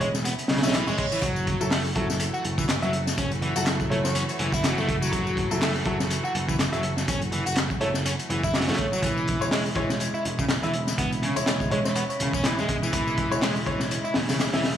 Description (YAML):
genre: breakbeat, breaks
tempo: 123 BPM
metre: 4/4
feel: swing 57% on 16ths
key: F# minor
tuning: A4 = 440 Hz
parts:
  - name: soft struck synth lead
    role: melody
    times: 0.0-14.7 s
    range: C#5 to E5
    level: -32 LUFS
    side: right 1 dB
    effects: chorus, telephone sound, digital delay
  - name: warm studio string section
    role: sustained chords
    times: 0.0-14.8 s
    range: C#3 to F#4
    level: -34 LUFS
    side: equal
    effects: vintage 12-bit sampler grit, sidechain pumping
  - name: overdriven electric guitar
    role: riff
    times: 0.0-14.6 s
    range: C#3 to F#4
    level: -29 LUFS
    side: equal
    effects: digital delay
  - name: picked electric bass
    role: bass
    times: 0.0-14.8 s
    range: E1 to F#2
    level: -29 LUFS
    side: right 1 dB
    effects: tube saturation
  - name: crunchy breakbeat drum kit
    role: drums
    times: 0.0-14.8 s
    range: hi-hat, kick drum, snare drum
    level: -27 LUFS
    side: equal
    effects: none
  - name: electronic tambourine and handclaps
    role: drums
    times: 0.1-14.6 s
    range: none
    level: -33 LUFS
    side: left 3 dB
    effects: none
  - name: reverse cymbal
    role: sound effects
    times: 0.5-1.2 s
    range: none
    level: -36 LUFS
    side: right 5 dB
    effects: none
  - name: clear baby grand piano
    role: stabs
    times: 1.6-14.8 s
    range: F#3 to C#5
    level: -32 LUFS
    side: left 2 dB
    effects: digital delay
room: light reverb, studio ambience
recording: studio reverb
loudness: -22 LUFS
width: side -10 dB against mid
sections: 0.0-14.8 A section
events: reverse cymbal 0.5-1.2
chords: 0.0 E6; 1.2 F#m7; 9.0 E6